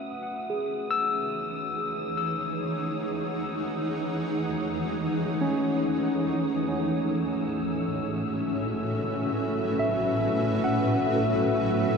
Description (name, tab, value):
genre	ambient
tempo	free time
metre	none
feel	none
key	A lydian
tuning	A4 = 440 Hz
part	granular cloud pad	sustained chords	0.0-12.0 s	A2 to F#5	-28 LUFS	equal	built-in reverb, shimmer reverb
part	overdriven tine electric piano	arpeggios	0.0-12.0 s	C#4 to E6	-30 LUFS	moving between left 4 dB and right 3 dB	auto-pan, tape echo, shimmer reverb
part	analog drone	drone	0.0-12.0 s	A3	-35 LUFS	equal	chorus
part	wind-like tuned noise texture	texture	0.0-12.0 s	D#6 to E6	-39 LUFS	equal	built-in reverb, shimmer reverb
room	wet huge ambient reverb, RT60 7.3 s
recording	cassette tape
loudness	-25 LUFS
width	side -5 dB against mid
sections	0.0-12.0 A section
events	fade-in on ambient pad 0.0-12.0; fade-in on synth drone 0.0-12.0; fade-in on synth texture 0.0-12.0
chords	0.1 Eadd9; 6.9 Amaj7